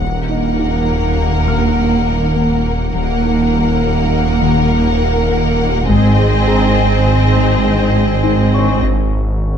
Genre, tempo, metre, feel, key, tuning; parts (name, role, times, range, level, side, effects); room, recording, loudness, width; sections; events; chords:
cinematic, hybrid orchestral and electronic film score; 102 BPM; 5/4; straight; Eb dorian; A4 = 439 Hz
rich symphonic violin section; melody; 0.0-8.8 s; Eb5 to Gb5; -23 LUFS; left 4 dB
rich studio violin section; second line; 0.0-8.8 s; Ab4 to Bb4; -21 LUFS; left 3 dB
rich studio viola section; accompaniment; 0.0-8.8 s; Bb3 to C4; -21 LUFS; right 1 dB
harp-like synth pluck; arpeggios; 0.0-8.4 s; Eb3 to Ab4; -22 LUFS; left 5 dB; chorus, digital delay
detuned saw bass; bass; 0.0-9.6 s; Eb1 to Ab1; -19 LUFS; equal
rich studio cello section; bass; 0.0-8.8 s; Eb2 to Ab2; -18 LUFS; right 3 dB
rich symphonic double bass section; bass; 0.0-8.8 s; Ab1 to Eb2; -19 LUFS; right 3 dB
taiko ensemble; drums; 0.0-1.2, 5.9-7.0 s; -26 LUFS; equal
felt-muted upright piano; texture; 0.0-9.6 s; Eb4 to F6; -28 LUFS; left 2 dB
moderate scoring stage reverb, RT60 1.6 s; dark, warm production; -12 LUFS; side -8 dB against mid
0.0-9.6 A section
break 8.8-9.6
0.0 Ebm; 5.9 Ab